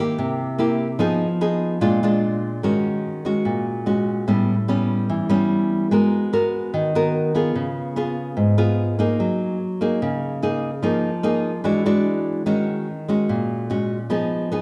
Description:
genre	bossa nova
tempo	146 BPM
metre	4/4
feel	straight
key	Eb minor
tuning	A4 = 440 Hz
part	nylon-string guitar	solo	0.0-14.6 s	Ab2 to Bb4	-22 LUFS	equal	none
room	wet recital hall reverb, RT60 1.5 s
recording	recorded in a church or concert hall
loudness	-21 LUFS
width	mono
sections	0.0-2.6 A section; 2.6-14.6 B section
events	none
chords	0.2 C7; 1.0 Fm7b5; 1.8 Bb7; 2.6 Ebm7; 4.3 A9; 5.9 Abm9; 7.5 Db7; 9.2 Gb69; 10.8 Fm7; 11.6 E9; 12.5 Ebm7; 14.1 Fm7b5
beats	0.18 0.59 | 1.00 1.41 1.82 2.23 | 2.63 3.04 3.45 3.86 | 4.27 4.68 5.09 5.50 | 5.91 6.32 6.73 7.14 | 7.55 7.96 8.37 8.78 | 9.19 9.60 10.01 10.42 | 10.83 11.24 11.65 12.06 | 12.47 12.88 13.29 13.70 | 14.11 14.52

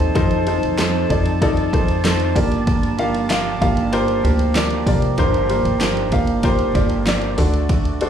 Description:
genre	piano-driven pop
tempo	96 BPM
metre	4/4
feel	straight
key	G minor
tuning	A4 = 440 Hz
part	dark upright piano	accompaniment	0.0-8.1 s	G2 to F5	-20 LUFS	left 2 dB	slapback echo
part	dark brass ensemble	sustained chords	0.0-8.1 s	F3 to A5	-30 LUFS	right 4 dB	none
part	fingerpicked steel-string acoustic guitar	riff	0.0-8.1 s	G2 to A4	-24 LUFS	right 6 dB	slapback echo
part	upright bass	bass	0.0-8.1 s	F1 to F2	-22 LUFS	equal	none
part	deep house drum kit	drums	0.0-8.1 s	handclaps, hi-hat, kick drum, ride cymbal, snare drum	-22 LUFS	equal	none
part	tambourine	percussion	0.8-7.2 s	none	-35 LUFS	left 5 dB	none
room	light reverb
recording	live gig heard through the venue's PA, club reverb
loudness	-16 LUFS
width	side -9 dB against mid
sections	0.0-8.1 A section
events	none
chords	0.0 F7; 2.4 Gm7; 7.4 D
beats	| 0.16 0.79 1.41 2.04 | 2.67 3.30 3.93 4.55 | 5.18 5.81 6.44 7.07 | 7.70

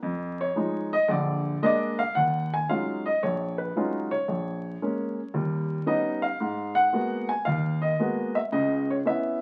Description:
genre	solo jazz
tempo	113 BPM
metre	4/4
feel	swing 68% on 8ths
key	Eb minor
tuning	A4 = 440 Hz
part	warm baby grand piano	solo	0.0-9.4 s	Bb1 to Ab5	-27 LUFS	equal	none
room	wet club reverb, RT60 0.5 s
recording	very old 78 rpm record, vinyl crackle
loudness	-27 LUFS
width	mono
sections	0.0-2.1 A section; 2.1-9.4 B section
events	grand piano solo 0.0-2.1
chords	0.0 Fm7; 1.1 Bb7; 2.1 Ebm11; 4.3 Bbm7; 5.3 Ebaug7; 6.4 Abm9; 8.5 Dbm7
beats	| 0.02 0.55 1.08 1.61 | 2.14 2.67 3.20 3.73 | 4.27 4.80 5.33 5.86 | 6.39 6.92 7.45 7.98 | 8.52 9.05

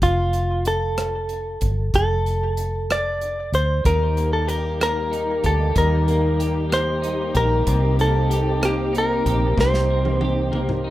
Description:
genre	six-eight pop ballad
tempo	63 BPM (dotted quarters)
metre	6/8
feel	straight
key	unclear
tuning	A4 = 442 Hz
part	direct-recorded clean electric guitar	melody	0.0-10.9 s	F4 to D5	-22 LUFS	equal	tape echo
part	vintage muted fingered electric bass	bass	0.0-10.9 s	F1 to Eb2	-22 LUFS	equal	none
part	modern studio drum kit	drums	0.0-10.8 s	hi-hat, kick drum, rim click, snare drum, toms	-26 LUFS	equal	none
part	dark studio string section	sustained chords	3.8-10.9 s	G3 to G4	-27 LUFS	equal	none
part	twelve-string electric guitar	accompaniment	3.9-10.9 s	C3 to G4	-28 LUFS	equal	double-tracked left and right
room	light reverb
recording	rough home demo mix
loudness	-18 LUFS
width	side -15 dB against mid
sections	0.0-10.9 A section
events	drum fill 9.6-10.9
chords	0.0 F; 3.9 Eb; 7.7 Cm7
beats	| 0.02 0.98 | 1.94 2.89 | 3.85 4.81 | 5.76 6.72 | 7.67 8.63 | 9.58 10.54

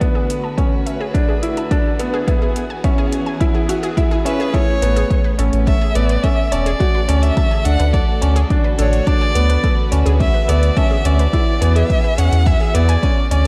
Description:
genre	piano and strings electronica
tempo	106 BPM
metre	4/4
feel	straight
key	A major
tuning	A4 = 440 Hz
part	warm chamber string section	sustained chords	0.0-13.5 s	D3 to B4	-29 LUFS	equal	sidechain pumping
part	analog pluck	arpeggios	0.0-13.4 s	G#4 to A5	-31 LUFS	equal	chorus, sidechain pumping, tape echo
part	clear grand piano	riff	0.0-13.5 s	B3 to F#4	-24 LUFS	equal	tape echo
part	electronic hi-hat	drums	0.0-13.4 s	none	-34 LUFS	equal	overdrive, high-pass filter on hats
part	electronic kick drum	drums	0.0-13.1 s	none	-20 LUFS	equal	overdrive
part	round analog bass	bass	0.3-13.5 s	E1 to E2	-17 LUFS	equal	sidechain pumping, high-pass filter
part	rich violin	melody	4.3-13.5 s	B4 to F#5	-24 LUFS	equal	tape echo
room	moderate lush hall reverb, RT60 1.9 s, studio reverb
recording	dreamy mix soaked in reverb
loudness	-16 LUFS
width	mono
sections	0.0-4.5 A section; 4.5-13.5 B section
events	build-up 0.0-4.5; filter sweep on synth arpeggio sound 0.0-4.5; drop 4.5-13.5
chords	0.0 Bm/D; 2.3 Eadd9; 4.5 Aadd9; 6.8 D; 9.1 Bm/D; 11.3 Eadd9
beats	| 0.01 0.58 1.14 1.71 | 2.28 2.84 3.41 3.98 | 4.54 5.11 5.67 6.24 | 6.80 7.37 7.94 8.50 | 9.07 9.63 10.20 10.77 | 11.33 11.90 12.46 13.03

